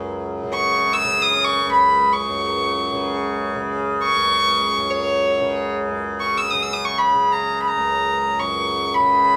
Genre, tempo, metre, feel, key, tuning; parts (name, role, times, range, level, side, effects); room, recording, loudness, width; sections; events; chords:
indian classical, Hindustani; free time; C# raga bageshri; A4 = 440 Hz
tanpura; drone; 0.0-9.4 s; C#2 to C#3; -26 LUFS; equal
rich violin; melody; 0.5-9.4 s; C#5 to E6; -20 LUFS; equal
moderate studio reverb, RT60 0.7 s; band playing live in one room, faint mains hum; -20 LUFS; mono
0.0-5.9 A section; 5.9-9.4 A section